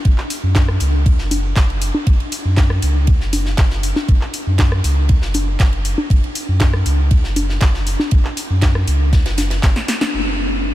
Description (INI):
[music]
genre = acid house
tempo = 119 BPM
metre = 4/4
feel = straight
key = unclear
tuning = A4 = 440 Hz
[part]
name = warm sub bass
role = bass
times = 0.1-10.7 s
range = F#1 to F#2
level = -18 LUFS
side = equal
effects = tube saturation, sidechain pumping
[part]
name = electronic kick drum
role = drums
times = 0.1-9.7 s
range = none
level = -14 LUFS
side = equal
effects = studio reverb
[part]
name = tight metal drum kit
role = drums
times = 0.1-10.0 s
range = ride cymbal, snare drum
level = -30 LUFS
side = right 2 dB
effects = high-pass filter on cymbals, studio reverb, high-pass filter on snare, high-pass filter on room
[part]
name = electro analog drum machine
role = drums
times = 0.2-10.1 s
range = congas, handclaps, hi-hat, rim click, snare drum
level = -21 LUFS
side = left 1 dB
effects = studio reverb
[sound]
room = light reverb, studio ambience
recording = none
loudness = -14 LUFS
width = side -15 dB against mid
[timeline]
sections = 0.0-10.1 A section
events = drum fill 9.6-10.1; band accent 10.0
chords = none